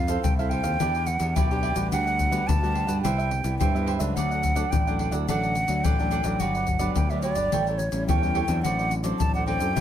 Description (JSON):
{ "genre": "samba and choro", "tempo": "107 BPM", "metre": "4/4", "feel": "straight", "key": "unclear", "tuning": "A4 = 441 Hz", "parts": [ { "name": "breathy mellow silver concert flute", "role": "melody", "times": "0.0-9.8 s", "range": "C#5 to A5", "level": "-28 LUFS", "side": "right 1 dB", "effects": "plate reverb" }, { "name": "nylon-string guitar", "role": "accompaniment", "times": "0.0-9.8 s", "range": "G2 to A4", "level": "-31 LUFS", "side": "left 3 dB", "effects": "none" }, { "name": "growling fingered electric bass", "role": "bass", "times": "0.0-9.8 s", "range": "G1 to G2", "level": "-28 LUFS", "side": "right 1 dB", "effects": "overdrive" }, { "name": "cavaquinho", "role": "accompaniment", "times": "0.1-9.8 s", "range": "D4 to G5", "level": "-32 LUFS", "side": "right 9 dB", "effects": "none" }, { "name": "tube shaker, pandeiro and surdo", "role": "percussion", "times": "0.1-9.8 s", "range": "none", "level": "-27 LUFS", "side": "left 2 dB", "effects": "none" } ], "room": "light reverb", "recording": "none", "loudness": "-22 LUFS", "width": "side -10 dB against mid", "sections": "0.0-9.8 A section", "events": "none", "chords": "0.0 Fmaj7; 0.8 Em7; 1.9 Gmaj7/D; 3.0 Cmaj7; 4.2 D; 6.4 Gmaj7; 7.5 A7; 8.6 D7/A" }